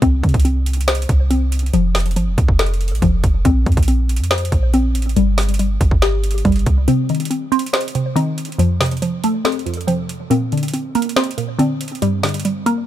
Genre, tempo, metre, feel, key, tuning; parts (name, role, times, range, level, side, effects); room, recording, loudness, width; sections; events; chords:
hip hop, trap; 140 BPM; 4/4; half-time; A4 = 443 Hz
hollow square pluck; arpeggios; 0.0-12.9 s; F3 to C5; -21 LUFS; left 3 dB; chorus, digital delay
clean 808-style bass; bass; 0.0-6.9 s; F1 to C3; -17 LUFS; equal
trap drum kit; drums; 0.0-12.8 s; hi-hat, kick drum, snare drum; -20 LUFS; equal
glassy wavetable pluck; accompaniment; 6.9-12.9 s; F2 to C5; -19 LUFS; right 2 dB; chorus
little or no reverb; -15 LUFS; side -12 dB against mid
0.0-12.9 A section
break 6.9-12.9; kick muted 12.0-12.9
0.0 N.C.; 1.7 F; 3.5 Bbsus2; 5.2 Gsus4; 6.9 Cm; 8.6 F; 10.3 Bbadd9; 12.0 Gm